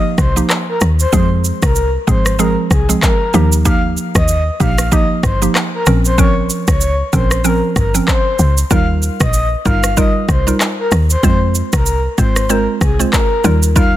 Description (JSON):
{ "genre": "afrobeats", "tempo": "95 BPM", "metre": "4/4", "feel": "swing 58% on 16ths", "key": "Eb mixolydian", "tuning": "A4 = 441 Hz", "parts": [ { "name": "breathy flute-like synth lead", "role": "melody", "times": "0.0-13.9 s", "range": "Ab4 to F5", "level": "-20 LUFS", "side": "left 1 dB", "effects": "chorus, ping-pong delay" }, { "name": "mallet-like synth pluck", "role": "accompaniment", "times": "0.0-14.0 s", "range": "F3 to C5", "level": "-18 LUFS", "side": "right 3 dB", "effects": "chorus" }, { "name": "woody log drum bass", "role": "bass", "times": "0.0-14.0 s", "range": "G1 to F2", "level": "-15 LUFS", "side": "equal", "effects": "none" }, { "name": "afro-pop drum kit", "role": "drums", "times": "0.2-13.9 s", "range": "handclaps, kick drum, rim click, shaker", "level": "-16 LUFS", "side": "equal", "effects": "soft clipping on snare" } ], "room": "little or no reverb", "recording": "dense, heavily limited modern master", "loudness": "-11 LUFS", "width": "side -13 dB against mid", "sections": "0.0-14.0 A section", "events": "none", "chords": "0.0 Ebadd9; 1.1 Fm; 3.3 Ebadd9; 5.9 Bbmadd9; 8.7 Ebadd9; 11.2 Fm; 13.4 Ebadd9" }